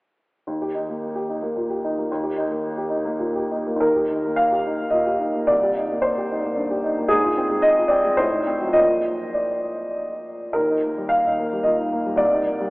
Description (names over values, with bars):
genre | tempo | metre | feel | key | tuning
classical, romantic character piece for solo piano | 94-115 BPM | 3/4 | rubato | Eb major | A4 = 440 Hz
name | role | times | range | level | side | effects
warm upright piano | solo | 0.5-12.7 s | C2 to F5 | -19 LUFS | equal | none
room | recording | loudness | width
wet cathedral reverb, RT60 5.8 s | recorded in a church or concert hall, telephone sound | -19 LUFS | side -24 dB against mid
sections
0.5-3.8 A section; 3.8-12.7 B section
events
none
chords
0.5 Eb; 5.5 Cm7; 7.1 Fm/Ab; 8.2 Adim7; 8.8 Bb; 10.6 Eb